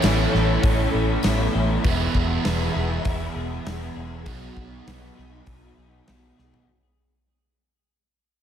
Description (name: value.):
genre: rock, shoegaze and dream pop.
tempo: 99 BPM.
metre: 4/4.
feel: straight.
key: B mixolydian.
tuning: A4 = 440 Hz.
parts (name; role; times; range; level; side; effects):
ensemble organ-string; sustained chords; 0.0-6.7 s; G#4 to B5; -32 LUFS; equal; ensemble chorus.
twelve-string electric guitar; arpeggios; 0.0-6.7 s; E3 to A4; -34 LUFS; left 2 dB; lush chorus, ping-pong delay.
overdriven electric guitar; riff; 0.0-1.8 s; A2 to E4; -28 LUFS; equal; analog chorus.
overdriven semi-hollow guitar; riff; 0.0-6.7 s; E2 to F#4; -28 LUFS; right 9 dB; reverse reverb.
raw garage guitar; riff; 0.0-6.7 s; E2 to F#4; -30 LUFS; left 9 dB; overdrive, ensemble chorus.
vintage muted fingered electric bass; bass; 0.0-6.6 s; E1 to B1; -25 LUFS; equal; none.
huge arena drum kit; drums; 0.0-6.7 s; hi-hat, kick drum, snare drum, toms; -26 LUFS; equal; none.
tambourine; percussion; 0.0-1.4 s; none; -37 LUFS; left 13 dB; none.
room: light reverb, small room ambience.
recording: none.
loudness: -20 LUFS.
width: side -9 dB against mid.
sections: 0.0-6.7 A section.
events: fade-out 0.0-6.7; drum fill 6.4-6.7.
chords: 0.0 Aadd9; 1.8 E; 4.3 B6.